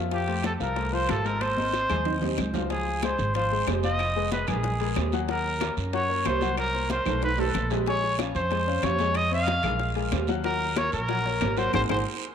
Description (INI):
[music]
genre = Afro-Cuban jazz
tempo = 186 BPM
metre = 4/4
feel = straight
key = unclear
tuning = A4 = 440 Hz
[part]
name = warm baby grand piano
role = accompaniment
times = 0.0-12.0 s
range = F3 to Ab5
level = -31 LUFS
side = left 10 dB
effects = none
[part]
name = upright bass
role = bass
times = 0.0-12.0 s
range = F1 to Gb2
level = -30 LUFS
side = right 1 dB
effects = none
[part]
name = warm trumpet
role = melody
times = 0.1-12.0 s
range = G4 to F5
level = -27 LUFS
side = right 1 dB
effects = tape echo
[part]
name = bongos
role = percussion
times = 0.1-12.0 s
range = none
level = -37 LUFS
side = left 13 dB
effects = none
[part]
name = congas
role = percussion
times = 0.1-12.0 s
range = none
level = -36 LUFS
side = equal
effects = none
[part]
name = guiro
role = percussion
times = 0.1-12.0 s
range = none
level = -41 LUFS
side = right 15 dB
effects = none
[part]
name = timbales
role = percussion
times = 0.1-12.0 s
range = none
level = -35 LUFS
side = right 15 dB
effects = none
[part]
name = claves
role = percussion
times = 0.4-12.0 s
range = none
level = -40 LUFS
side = left 13 dB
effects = none
[sound]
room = wet spring reverb, RT60 2.7 s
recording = 1960s-style stereo with parts hard left and right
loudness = -24 LUFS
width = side -8 dB against mid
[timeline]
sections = 0.0-2.7 A section; 2.7-12.3 B section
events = drum fill 1.4-2.7, 7.1-7.9, 11.7-12.3; band accent 11.7-12.3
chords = 0.1 Fadd9; 1.4 Ab; 2.7 Dbmaj7; 4.0 Fm7b5; 4.6 Ebmadd11/Bb; 5.3 Ebm7; 6.6 Am69; 7.2 Asus2; 7.9 Bbm7; 9.2 Fm7; 9.8 Ebmadd11/Bb; 10.4 Ebm7; 11.7 Ab7